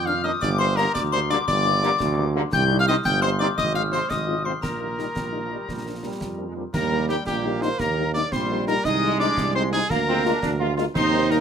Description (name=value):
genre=military-style march for wind band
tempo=114 BPM (dotted quarters)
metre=6/8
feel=straight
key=Eb major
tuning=A4 = 441 Hz
part: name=warm cornet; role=melody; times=0.0-11.4 s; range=G4 to G5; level=-28 LUFS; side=right 2 dB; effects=none
part: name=bright piccolo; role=second line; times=0.0-11.4 s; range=G5 to G6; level=-27 LUFS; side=left 6 dB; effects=none
part: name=glockenspiel with brass mallets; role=second line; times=0.0-6.5 s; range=Bb5 to G6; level=-28 LUFS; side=left 6 dB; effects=none
part: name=mellow tuba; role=bass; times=0.0-11.4 s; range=G1 to F2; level=-26 LUFS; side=right 4 dB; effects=none
part: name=mellow French horn section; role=accompaniment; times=0.1-11.4 s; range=F3 to F4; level=-29 LUFS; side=left 5 dB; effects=none
part: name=clear trombone section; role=sustained chords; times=0.2-11.4 s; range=D3 to F4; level=-29 LUFS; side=right 2 dB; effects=none
part: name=concert snare drum, clash cymbals and concert bass drum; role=drums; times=0.4-11.4 s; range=none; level=-33 LUFS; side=equal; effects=none
part: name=mellow euphonium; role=second line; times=6.7-11.4 s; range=G3 to Eb4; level=-30 LUFS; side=right 6 dB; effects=none
room=moderate studio reverb, RT60 0.5 s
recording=none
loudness=-20 LUFS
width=side -7 dB against mid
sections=0.0-6.7 A section; 6.7-11.4 B section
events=none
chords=0.4 Gm; 2.5 Cm; 3.6 Fm7/Ab; 4.6 Eb/Bb; 5.7 Bb; 6.7 Eb; 8.8 Ab/C; 9.9 Bb7/D